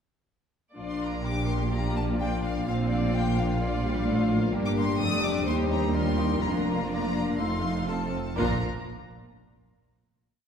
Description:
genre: quick classical-period movement for symphony orchestra.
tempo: 126 BPM.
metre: 4/4.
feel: rubato.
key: Bb major.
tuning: A4 = 444 Hz.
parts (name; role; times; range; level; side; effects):
rich chamber violin section; second line; 0.7-8.6 s; F4 to F5; -34 LUFS; left 2 dB; none.
mellow French horn section; sustained chords; 0.7-8.6 s; F3 to Eb4; -32 LUFS; left 4 dB; none.
rich studio viola section; accompaniment; 0.8-8.6 s; G3 to F4; -33 LUFS; equal; none.
warm chamber cello section; bass; 0.8-8.6 s; Eb2 to Bb2; -32 LUFS; right 2 dB; none.
warm chamber double bass section; bass; 0.8-8.6 s; F1 to Eb2; -30 LUFS; right 2 dB; none.
warm chamber violin section; melody; 0.9-8.6 s; D5 to Eb6; -34 LUFS; left 3 dB; none.
room: wet scoring stage reverb, RT60 1.7 s.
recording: heard from further back in the room.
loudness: -24 LUFS.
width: side -7 dB against mid.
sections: 0.8-8.4 theme; 8.4-10.3 final chord.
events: none.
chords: 0.8 Bb; 4.5 Gm; 5.5 Ebmaj7; 6.4 Bb/F; 7.4 F7; 8.4 Bb.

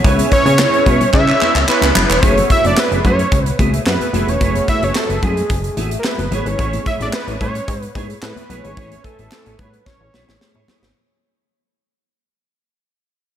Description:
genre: early-eighties boogie funk.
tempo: 110 BPM.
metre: 4/4.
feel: straight.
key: F# minor.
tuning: A4 = 439 Hz.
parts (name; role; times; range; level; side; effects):
mellow synth brass; accompaniment; 0.0-10.9 s; A3 to G#5; -24 LUFS; equal; chorus.
clean electric guitar; riff; 0.0-10.9 s; A3 to E5; -25 LUFS; right 3 dB; ensemble chorus.
plucky analog bass; bass; 0.0-10.9 s; E1 to C#3; -19 LUFS; equal; none.
modern studio drum kit; drums; 0.0-10.9 s; handclaps, hi-hat, kick drum, snare drum; -18 LUFS; equal; none.
congas; percussion; 0.2-10.8 s; none; -26 LUFS; left 4 dB; none.
fat analog lead; melody; 0.3-10.6 s; G#4 to E5; -18 LUFS; right 1 dB; slapback echo.
room: moderate concert hall reverb, RT60 2.5 s.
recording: big arena sound.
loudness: -13 LUFS.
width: side -10 dB against mid.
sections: 0.0-2.2 A section; 2.2-11.0 B section.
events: drum fill 1.1-2.2, 9.9-11.0; fade-out 2.2-11.0.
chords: 0.0 C#m7; 2.2 F#m9; 6.3 Amaj7.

